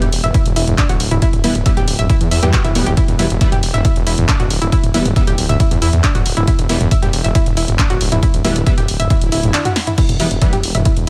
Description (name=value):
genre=driving peak-time techno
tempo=137 BPM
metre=4/4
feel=straight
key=E minor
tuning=A4 = 440 Hz
part: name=analog pluck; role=riff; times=0.0-11.0 s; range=D4 to E5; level=-24 LUFS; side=equal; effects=chorus, sidechain pumping, delay
part: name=detuned saw bass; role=bass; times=0.0-11.0 s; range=D1 to E2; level=-21 LUFS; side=equal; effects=sidechain pumping
part: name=punchy analog drum machine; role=drums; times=0.0-11.1 s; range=crash cymbal, handclaps, hi-hat, ride cymbal, snare drum, toms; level=-22 LUFS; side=equal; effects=none
part: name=electronic kick drum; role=drums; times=0.3-10.9 s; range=none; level=-18 LUFS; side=equal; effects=none
part: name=rave stab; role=stabs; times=1.4-10.5 s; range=E3 to B3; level=-24 LUFS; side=equal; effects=chorus, built-in reverb, sidechain pumping, delay
part: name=swell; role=sound effects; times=9.2-10.0 s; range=none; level=-30 LUFS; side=equal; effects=none
room=little or no reverb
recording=none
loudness=-15 LUFS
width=mono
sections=0.0-11.1 A section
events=swell 9.2-10.0; drum fill 9.8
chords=0.0 Em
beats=0.34 0.78 | 1.22 1.66 2.10 2.53 | 2.97 3.41 3.85 4.29 | 4.72 5.16 5.60 6.04 | 6.48 6.91 7.35 7.79 | 8.23 8.66 9.10 9.54 | 9.98 10.42 10.86